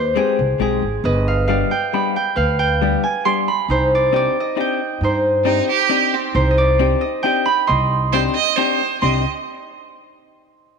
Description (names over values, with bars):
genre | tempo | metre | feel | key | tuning
musette waltz | 136 BPM | 3/4 | straight | C harmonic minor | A4 = 440 Hz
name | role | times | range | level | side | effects
concert harp | melody | 0.0-9.2 s | Eb4 to C6 | -18 LUFS | right 2 dB | none
upright bass | bass | 0.0-9.2 s | G1 to G2 | -20 LUFS | right 1 dB | none
vintage hollow-body jazz guitar | accompaniment | 0.2-9.2 s | G3 to G4 | -23 LUFS | left 11 dB | none
clear violin | second line | 5.4-9.2 s | C4 to Eb5 | -19 LUFS | right 9 dB | none
room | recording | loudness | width
moderate echo chamber reverb, RT60 2.2 s | 1960s-style stereo with parts hard left and right | -15 LUFS | side -5 dB against mid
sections
0.0-6.4 A section; 6.4-9.0 B section; 9.0-10.4 C section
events
none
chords
0.0 Abmaj7; 1.0 G; 3.7 Cmadd9